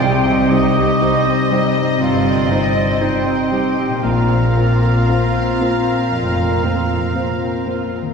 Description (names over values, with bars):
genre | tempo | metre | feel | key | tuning
cinematic, emotional film score for orchestra | 58 BPM | 4/4 | rubato | unclear | A4 = 440 Hz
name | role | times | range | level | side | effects
dark studio violin section | melody | 0.0-8.0 s | Eb5 to F5 | -26 LUFS | left 2 dB | none
clear oboe | second line | 0.0-7.8 s | Bb4 to Eb5 | -25 LUFS | right 4 dB | none
dark studio violin section | second line | 0.0-8.1 s | G3 to Bb4 | -28 LUFS | left 1 dB | none
small flute group | second line | 0.0-7.9 s | Eb5 to Bb5 | -25 LUFS | left 1 dB | none
warm clarinet | second line | 0.0-7.8 s | Eb4 to G4 | -25 LUFS | left 5 dB | none
dark studio viola section | accompaniment | 0.0-7.9 s | C4 | -23 LUFS | right 2 dB | none
warm concert grand piano | accompaniment | 0.0-8.1 s | Bb1 to C5 | -21 LUFS | left 1 dB | none
concert harp | arpeggios | 0.0-8.1 s | Bb2 to C5 | -24 LUFS | left 5 dB | none
dark studio double bass section | bass | 0.0-7.0 s | F1 to C2 | -23 LUFS | right 2 dB | none
warm studio cello section | bass | 0.0-7.0 s | F2 to C3 | -25 LUFS | right 1 dB | none
room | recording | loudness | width
wet scoring stage reverb, RT60 1.8 s | recorded in a church or concert hall | -14 LUFS | side -5 dB against mid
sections
0.0-8.1 A section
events
none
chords
0.0 Cm; 4.0 Bbsus2